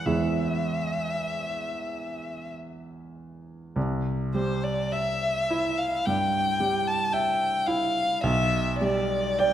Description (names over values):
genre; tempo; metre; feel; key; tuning
classical, romantic duo for violin and grand piano; 47-56 BPM; 4/4; rubato; E major, C major from 3.8 s; A4 = 440 Hz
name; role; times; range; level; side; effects
warm violin; melody; 0.0-9.5 s; C5 to A5; -27 LUFS; left 2 dB; none
clear grand piano; accompaniment; 0.0-9.5 s; B1 to E5; -28 LUFS; right 2 dB; none
room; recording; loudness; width
wet scoring stage reverb, RT60 1.5 s; none; -24 LUFS; side -10 dB against mid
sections
0.0-3.8 A section; 3.8-9.5 B section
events
none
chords
0.0 E; 3.8 C; 8.2 G/B